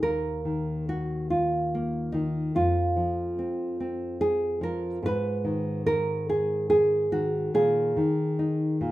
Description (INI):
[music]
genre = folk, solo fingerstyle acoustic guitar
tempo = 48 BPM (dotted quarters)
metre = 6/8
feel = rubato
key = Eb minor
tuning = A4 = 440 Hz
[part]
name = nylon-string guitar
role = solo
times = 0.0-8.9 s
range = Eb2 to Cb5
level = -24 LUFS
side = equal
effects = none
[sound]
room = wet studio reverb, RT60 0.5 s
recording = rough home demo mix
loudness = -24 LUFS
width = side -16 dB against mid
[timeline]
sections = 0.0-8.9 A section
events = none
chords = 0.0 Eb5; 2.5 F5; 5.0 Abm; 7.5 Bbsus4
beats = | 0.02 1.29 | 2.54 3.79 | 5.03 6.28 | 7.54 8.81